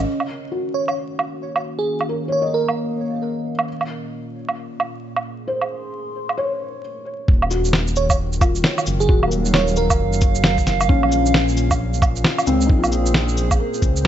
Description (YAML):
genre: future garage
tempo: 133 BPM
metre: 4/4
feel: swing 62% on 16ths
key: Eb dorian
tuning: A4 = 440 Hz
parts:
  - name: felt-muted upright piano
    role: accompaniment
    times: 0.0-14.1 s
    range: Bb3 to Eb5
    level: -26 LUFS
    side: left 4 dB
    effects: sidechain pumping, tape echo
  - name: warbly tape-like pad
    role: sustained chords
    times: 0.0-14.1 s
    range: Bb2 to C6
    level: -26 LUFS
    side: right 2 dB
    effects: chorus, built-in reverb, vintage 12-bit sampler grit, sidechain pumping
  - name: dark detuned saw bass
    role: bass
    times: 0.0-0.1, 7.3-14.1 s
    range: Eb1 to Db2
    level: -21 LUFS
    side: equal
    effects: sidechain pumping
  - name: electronic woodblock, cabasa, shaker and snare drum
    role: drums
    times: 0.2-14.1 s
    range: none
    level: -20 LUFS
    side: right 2 dB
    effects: none
  - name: bell-like FM electric piano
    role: melody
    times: 0.7-3.0, 8.0-10.2 s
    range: Ab4 to Db5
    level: -24 LUFS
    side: right 3 dB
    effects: chorus, tremolo, vintage 12-bit sampler grit, tape echo
  - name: electronic kick drum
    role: drums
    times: 7.3-13.9 s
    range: none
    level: -17 LUFS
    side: equal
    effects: none
room: light reverb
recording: vinyl crackle, nothing above 7.9 kHz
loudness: -17 LUFS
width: side -11 dB against mid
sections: 0.1-7.3 A section; 7.3-14.1 B section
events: filter sweep on ambient pad 0.1-7.3; stop 6.8-7.3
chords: 0.1 Ebm7; 3.7 Bbm9; 7.3 Ebm; 10.9 Bbm9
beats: | 0.07 0.52 0.97 1.42 | 1.87 2.32 2.77 3.22 | 3.67 4.13 4.58 5.03 | 5.48 5.93 6.38 6.83 | 7.28 7.74 8.19 8.64 | 9.09 9.54 9.99 10.44 | 10.89 11.34 11.79 12.25 | 12.70 13.15 13.60 14.05